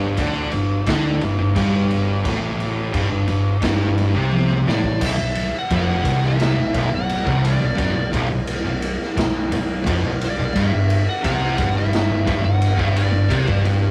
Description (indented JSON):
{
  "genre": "stoner and doom metal",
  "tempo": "87 BPM",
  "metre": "4/4",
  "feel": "straight",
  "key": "B phrygian",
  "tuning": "A4 = 443 Hz",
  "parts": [
    { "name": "crunchy overdriven guitar", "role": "riff", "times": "0.0-13.9 s", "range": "B1 to D3", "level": "-30 LUFS", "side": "equal", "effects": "none" },
    { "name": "thick fuzz guitar", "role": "riff", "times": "0.0-13.9 s", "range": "B1 to D3", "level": "-23 LUFS", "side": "equal", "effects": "distortion" },
    { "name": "thick fuzz guitar", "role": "riff", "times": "0.0-13.9 s", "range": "B1 to D3", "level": "-29 LUFS", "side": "equal", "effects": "none" },
    { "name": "fuzz fingered electric bass", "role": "bass", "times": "0.0-13.9 s", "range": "B0 to D2", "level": "-32 LUFS", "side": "equal", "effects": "none" },
    { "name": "raw garage drum kit", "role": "drums", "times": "0.2-13.8 s", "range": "crash cymbal, kick drum, ride cymbal, snare drum, toms", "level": "-25 LUFS", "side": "equal", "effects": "none" },
    { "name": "fuzz lead guitar", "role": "melody", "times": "4.7-13.6 s", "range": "D5 to F#5", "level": "-29 LUFS", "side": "equal", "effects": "distortion" }
  ],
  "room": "moderate small room reverb, RT60 0.5 s",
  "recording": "rough rehearsal-room recording, warm saturation",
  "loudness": "-20 LUFS",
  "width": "mono",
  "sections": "0.0-5.0 A section; 5.0-13.9 B section",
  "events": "drum fill 4.3-5.0",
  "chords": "0.0 G5; 5.0 B5; 10.5 G5"
}